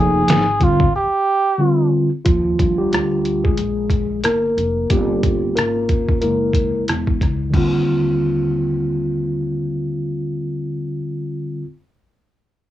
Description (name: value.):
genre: hip hop, jazz-hop.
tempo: 91 BPM.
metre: 4/4.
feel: swing 60% on 16ths.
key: Eb major.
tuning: A4 = 439 Hz.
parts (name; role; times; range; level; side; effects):
trumpet with cup mute; melody; 0.0-1.9 s; F4 to Ab4; -18 LUFS; right 2 dB; none.
mellow tine electric piano; accompaniment; 0.0-11.7 s; D3 to Bb4; -18 LUFS; equal; medium stereo tremolo.
upright bass; bass; 0.0-11.6 s; Fb1 to Eb2; -25 LUFS; equal; none.
trip hop sampler-style drum kit; drums; 0.3-7.7 s; crash cymbal, hi-hat, kick drum, rim click, snare drum; -19 LUFS; equal; vintage 12-bit sampler grit.
room: moderate booth ambience, RT60 0.2 s.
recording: home recording on cassette.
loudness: -16 LUFS.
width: side -13 dB against mid.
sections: 0.0-2.3 A section; 2.3-7.5 B section; 7.5-10.2 C section.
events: break 0.9-2.3; tine electric piano solo 2.3-7.5.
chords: 0.0 Fm7; 0.9 Dmadd11; 2.3 Ebmaj9; 4.9 Gm7b5; 6.2 Gb9; 7.5 Ebmaj9.